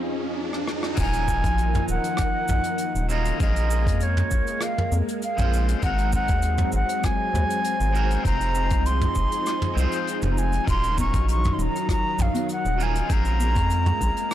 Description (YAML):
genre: sunset chillout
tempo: 99 BPM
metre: 4/4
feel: straight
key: Eb dorian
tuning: A4 = 439 Hz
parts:
  - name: soft string machine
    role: sustained chords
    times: 0.0-14.3 s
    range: F2 to Ab4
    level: -30 LUFS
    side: equal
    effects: ensemble chorus
  - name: riser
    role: sound effects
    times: 0.0-1.0 s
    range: none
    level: -30 LUFS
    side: right 1 dB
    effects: none
  - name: soft brush drum kit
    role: drums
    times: 0.5-14.3 s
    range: cabasa, crash cymbal, hi-hat, rim click, toms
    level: -30 LUFS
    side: equal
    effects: none
  - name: electric guitar at the edge of break-up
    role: accompaniment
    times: 0.9-14.3 s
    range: F3 to C5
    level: -31 LUFS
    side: left 1 dB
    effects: auto-pan, tape echo
  - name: reedy silver concert flute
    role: melody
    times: 1.0-14.3 s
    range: Db5 to Db6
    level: -27 LUFS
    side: equal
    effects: analog delay
  - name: round analog bass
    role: bass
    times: 1.0-14.1 s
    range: Eb1 to F2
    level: -23 LUFS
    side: equal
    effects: none
  - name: electronic kick drum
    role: drums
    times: 1.0-14.1 s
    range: none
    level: -25 LUFS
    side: equal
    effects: none
  - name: congas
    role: percussion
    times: 11.0-14.1 s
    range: none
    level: -33 LUFS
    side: left 3 dB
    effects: none
room: small room ambience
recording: dry, gritty hardware recording, transformer saturation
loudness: -21 LUFS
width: side -12 dB against mid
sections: 1.0-14.3 A section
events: break 0.0-1.0; riser 0.0-1.0; drum fill 0.5-1.0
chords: 0.0 Fm7; 1.0 Ebm9; 3.4 Bbm9; 5.8 Ab9; 8.3 Fm7; 10.7 Ebm9; 13.1 Bbm9